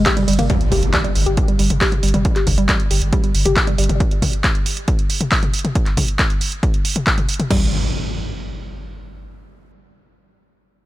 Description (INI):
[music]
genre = driving peak-time techno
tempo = 137 BPM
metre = 4/4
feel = straight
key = unclear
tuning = A4 = 440 Hz
[part]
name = woody wave-folded pluck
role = riff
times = 0.0-3.9, 7.5-7.7 s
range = G3 to G4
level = -22 LUFS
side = equal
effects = chorus, overdrive, sidechain pumping, ping-pong delay
[part]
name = saturated sub bass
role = bass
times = 0.0-4.0 s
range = G1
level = -19 LUFS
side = equal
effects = tube saturation, sidechain pumping, low-pass filter
[part]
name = punchy analog drum machine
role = drums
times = 0.1-7.6 s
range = crash cymbal, kick drum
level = -19 LUFS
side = equal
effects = none
[part]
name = punchy analog drum machine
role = drums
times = 0.1-7.5 s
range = handclaps, hi-hat, ride cymbal, toms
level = -21 LUFS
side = equal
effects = sidechain pumping on hats, sidechain pumping on cymbals, sidechain pumping on toms
[part]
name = impact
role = sound effects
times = 0.5-2.2, 7.5-9.3 s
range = none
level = -26 LUFS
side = equal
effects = none
[sound]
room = little or no reverb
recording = none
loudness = -15 LUFS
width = side -16 dB against mid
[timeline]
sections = 0.5-7.5 A section; 7.5-9.3 B section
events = impact 0.5-2.2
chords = none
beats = 0.06 | 0.50 0.94 1.37 1.81 | 2.25 2.69 3.13 3.56 | 4.00 4.44 4.88 5.32 | 5.75 6.19 6.63 7.07 | 7.50 7.94 8.38 8.82